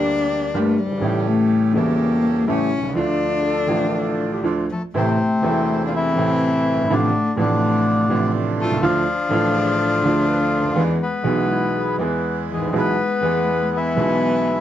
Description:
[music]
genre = tango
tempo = 123 BPM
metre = 4/4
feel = rubato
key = D harmonic minor, A harmonic minor from 4.9 s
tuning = A4 = 440 Hz
[part]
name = warm cello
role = second line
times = 0.0-14.6 s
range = E3 to F4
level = -22 LUFS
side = left 3 dB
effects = none
[part]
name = warm baby grand piano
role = accompaniment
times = 0.0-14.6 s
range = E1 to A4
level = -21 LUFS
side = right 2 dB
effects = none
[part]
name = bandoneon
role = stabs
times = 0.0-14.6 s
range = G#3 to A4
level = -30 LUFS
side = right 9 dB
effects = none
[part]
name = dark clarinet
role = second line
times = 3.4-4.9, 9.3-12.4 s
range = E4 to B4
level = -29 LUFS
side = left 2 dB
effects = none
[part]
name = bandoneon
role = melody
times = 4.7-14.6 s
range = C3 to B4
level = -22 LUFS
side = left 2 dB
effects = none
[sound]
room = light reverb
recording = close, detailed microphones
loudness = -17 LUFS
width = side -11 dB against mid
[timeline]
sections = 0.0-4.9 A section; 4.9-14.6 B section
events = cello solo 0.0-4.9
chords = 0.0 Gm; 1.0 A7; 3.0 Dm; 4.9 Am; 6.9 F6/A; 8.8 Dm; 10.8 E

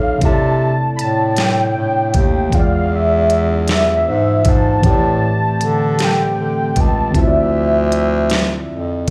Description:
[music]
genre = slow six-eight R&B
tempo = 52 BPM (dotted quarters)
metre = 6/8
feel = straight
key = C major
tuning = A4 = 440 Hz
[part]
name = warm velvety synth lead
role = melody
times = 0.0-9.1 s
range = E5 to B5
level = -22 LUFS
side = equal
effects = chorus, slapback echo, tape echo
[part]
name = tine electric piano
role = accompaniment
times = 0.0-9.1 s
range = A2 to D5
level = -23 LUFS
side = equal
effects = slapback echo
[part]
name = warm bass clarinet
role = bass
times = 0.0-9.1 s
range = B1 to D3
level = -20 LUFS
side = equal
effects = none
[part]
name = chorused pulse-width pad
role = sustained chords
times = 0.2-9.1 s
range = C3 to E5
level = -30 LUFS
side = equal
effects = none
[part]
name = smooth R&B drum kit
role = drums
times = 0.2-9.1 s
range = hi-hat, kick drum, snare drum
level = -19 LUFS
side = equal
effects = none
[sound]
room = little or no reverb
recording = live gig heard through the venue's PA, club reverb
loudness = -16 LUFS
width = mono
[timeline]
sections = 0.0-9.1 A section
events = none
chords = 0.2 C69; 2.5 E7b9; 4.8 Am11; 7.1 Dm9

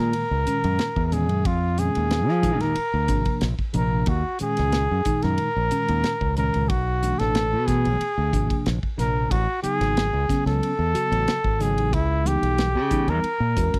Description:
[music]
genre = electric jazz fusion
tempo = 92 BPM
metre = 4/4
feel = straight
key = unclear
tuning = A4 = 440 Hz
[part]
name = breathy trumpet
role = melody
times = 0.0-13.8 s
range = E4 to A#4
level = -27 LUFS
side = equal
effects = slapback echo
[part]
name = mellow tine electric piano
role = accompaniment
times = 0.0-13.8 s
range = A#2 to A#4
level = -30 LUFS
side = equal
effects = phaser
[part]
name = modern bright fingered electric bass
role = bass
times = 0.0-13.8 s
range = G#1 to E#3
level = -26 LUFS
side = equal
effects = none
[part]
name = modern studio drum kit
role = drums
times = 0.1-13.8 s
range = hi-hat, kick drum, ride cymbal, snare drum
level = -30 LUFS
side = equal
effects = none
[sound]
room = little or no reverb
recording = dry, close 1970s-style studio recording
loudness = -23 LUFS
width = mono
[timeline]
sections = 0.0-13.8 A section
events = none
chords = 0.0 F#9; 1.5 D#9sus4; 2.8 A#; 4.1 D#7(no3); 6.7 Bm7; 8.0 A#9; 9.3 Amaj9; 11.9 C#m7b5; 13.2 F#7

